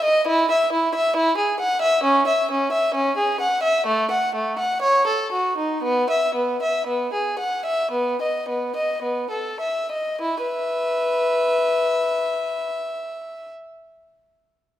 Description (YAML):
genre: classical, baroque-style suite movement for unaccompanied violin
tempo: 49-68 BPM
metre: 4/4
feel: rubato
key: E major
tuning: A4 = 439 Hz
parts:
  - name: warm violin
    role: solo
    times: 0.0-13.5 s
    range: A3 to F#5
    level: -19 LUFS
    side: equal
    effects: none
room: moderate scoring stage reverb, RT60 1.4 s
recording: minimal, uncompressed stereo recording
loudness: -19 LUFS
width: side -12 dB against mid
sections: 0.0-10.2 A section; 10.2-14.8 B section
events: slowing down 0.3-10.2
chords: 0.3 E; 2.0 C#m; 3.9 F#m/A; 5.8 E/B; 7.9 B7; 10.2 E5